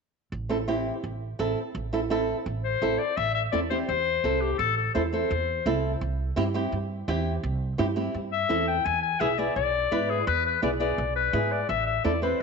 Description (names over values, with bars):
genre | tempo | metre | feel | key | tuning
latin | 169 BPM | 4/4 | straight | A minor | A4 = 441 Hz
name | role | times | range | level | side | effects
upright bass | bass | 0.3-12.4 s | A1 to G#2 | -31 LUFS | right 2 dB | none
flamenco guitar | accompaniment | 0.5-12.4 s | B3 to B4 | -28 LUFS | right 3 dB | none
clear clarinet | melody | 2.6-5.8, 8.3-12.4 s | G4 to G#5 | -26 LUFS | left 8 dB | none
room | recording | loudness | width
wet echo chamber reverb, RT60 1.7 s, small room ambience | nothing above 7.9 kHz | -24 LUFS | side -4 dB against mid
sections
0.3-3.2 A section; 3.2-12.4 B section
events
none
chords
0.3 Am; 6.0 C; 8.9 E7; 11.7 Am